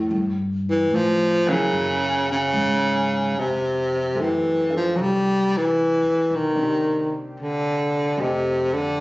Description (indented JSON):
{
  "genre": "jazz ballad",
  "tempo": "74 BPM",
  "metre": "4/4",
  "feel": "swing 69% on 8ths",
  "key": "F major",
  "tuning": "A4 = 437 Hz",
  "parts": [
    { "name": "breathy baritone saxophone", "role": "melody", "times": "0.0-9.0 s", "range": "A2 to G3", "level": "-20 LUFS", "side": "equal", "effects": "none" },
    { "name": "clear upright piano", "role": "accompaniment", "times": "0.0-9.0 s", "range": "Gb3 to F5", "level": "-29 LUFS", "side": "equal", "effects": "none" },
    { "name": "upright bass", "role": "bass", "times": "0.0-9.0 s", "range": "B1 to A2", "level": "-29 LUFS", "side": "equal", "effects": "none" }
  ],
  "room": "light reverb",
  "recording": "recorded on a phone in the room, studio reverb, nothing above 7.7 kHz",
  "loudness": "-19 LUFS",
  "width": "side -19 dB against mid",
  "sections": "0.0-3.3 A section; 3.3-9.0 B section",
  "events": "baritone saxophone solo 0.0-3.3",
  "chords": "0.1 Gmadd9; 1.7 Gb9; 3.3 Fmaj9; 6.6 Csus2; 8.2 F9",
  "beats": "| 0.11 0.92 1.72 2.54 | 3.35 4.16 4.96 5.77 | 6.57 7.37 8.17 8.96"
}